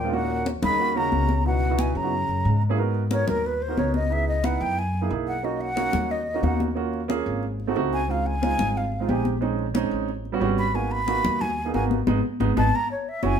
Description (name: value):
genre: Afro-Cuban jazz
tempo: 181 BPM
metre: 4/4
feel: straight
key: G# minor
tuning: A4 = 440 Hz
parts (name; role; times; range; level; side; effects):
- breathy mellow concert flute; melody; 0.0-13.4 s; A#4 to B5; -26 LUFS; equal; none
- breathy trombone; second line; 0.0-2.6 s; A#2 to D#3; -30 LUFS; left 6 dB; none
- warm grand piano; accompaniment; 0.0-13.3 s; G3 to B4; -27 LUFS; right 6 dB; none
- upright bass; bass; 0.0-13.4 s; F#1 to G#2; -26 LUFS; left 1 dB; none
- congas; percussion; 0.1-13.3 s; none; -28 LUFS; left 4 dB; none
room: moderate large studio reverb, RT60 1.0 s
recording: band playing live in one room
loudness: -22 LUFS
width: side -8 dB against mid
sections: 0.0-2.8 A section; 2.8-13.4 B section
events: flute solo 2.8-13.4; band accent 12.1-13.4; drum fill 12.9-13.4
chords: 0.1 D#m7; 1.5 C#m11; 2.1 F#add9; 2.8 G#m9; 4.1 C#m7; 4.8 F#13; 5.4 Bmaj7; 6.8 D#m7; 7.4 G#7b9; 8.1 C#maj9; 9.4 A#m11; 10.1 A13; 10.7 G#m9; 12.7 F#5